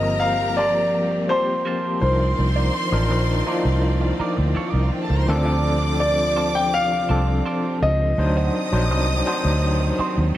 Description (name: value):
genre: lush 1970s-style soul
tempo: 83 BPM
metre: 4/4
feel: straight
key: C dorian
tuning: A4 = 440 Hz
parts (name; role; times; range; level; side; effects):
- dark grand piano; melody; 0.0-10.4 s; C5 to G5; -23 LUFS; left 1 dB; none
- dark studio violin section; second line; 0.0-10.4 s; D4 to Eb6; -28 LUFS; right 1 dB; none
- overdriven tine electric piano; accompaniment; 0.0-10.4 s; Eb3 to C5; -25 LUFS; left 2 dB; medium tremolo
- bright studio string section; sustained chords; 0.0-10.4 s; C3 to D5; -31 LUFS; right 3 dB; none
- clean electric guitar; riff; 0.0-10.4 s; A3 to D5; -31 LUFS; right 5 dB; wah
- vintage muted fingered electric bass; bass; 0.0-10.3 s; G1 to Eb2; -21 LUFS; equal; none
room: light reverb, studio ambience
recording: none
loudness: -18 LUFS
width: side -13 dB against mid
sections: 0.0-10.4 A section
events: none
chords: 0.0 Gm11; 2.0 Cm11; 5.3 Dm7; 8.2 D7b9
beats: 0.21 0.93 1.66 | 2.38 3.11 3.83 4.56 | 5.28 6.01 6.73 7.46 | 8.18 8.90 9.63 10.35